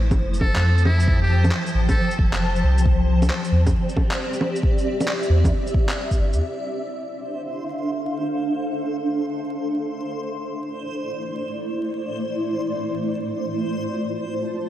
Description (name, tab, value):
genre	future garage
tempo	135 BPM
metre	4/4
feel	swing 66% on 16ths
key	unclear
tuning	A4 = 440 Hz
part	granular cloud pad	sustained chords	0.0-14.7 s	F3 to A5	-25 LUFS	equal	built-in reverb, ensemble chorus, sidechain pumping
part	soft dub sub bass	bass	0.0-6.4 s	F1 to F2	-18 LUFS	equal	sidechain pumping
part	electronic bongos, shaker and handclaps	drums	0.1-6.4 s	none	-28 LUFS	right 1 dB	low-pass filter on perc, small room ambience, low-pass filter on snare
part	electronic kick drum	drums	0.1-6.2 s	none	-21 LUFS	equal	small room ambience
part	trumpet with metal mute	melody	0.4-2.2 s	E4 to A4	-28 LUFS	right 1 dB	diffuse ambient delay
part	backwards swelling texture	texture	7.3-14.7 s	C5	-34 LUFS	equal	built-in reverb
room	moderate lush hall reverb, RT60 2.2 s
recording	dreamy mix soaked in reverb, vinyl crackle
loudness	-20 LUFS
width	side -13 dB against mid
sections	0.0-6.4 A section; 6.4-14.7 B section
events	filter sweep on ambient pad 6.4-14.7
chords	0.0 Fadd9; 2.9 C6; 6.4 Dm9; 10.0 Amadd11; 13.5 Fadd9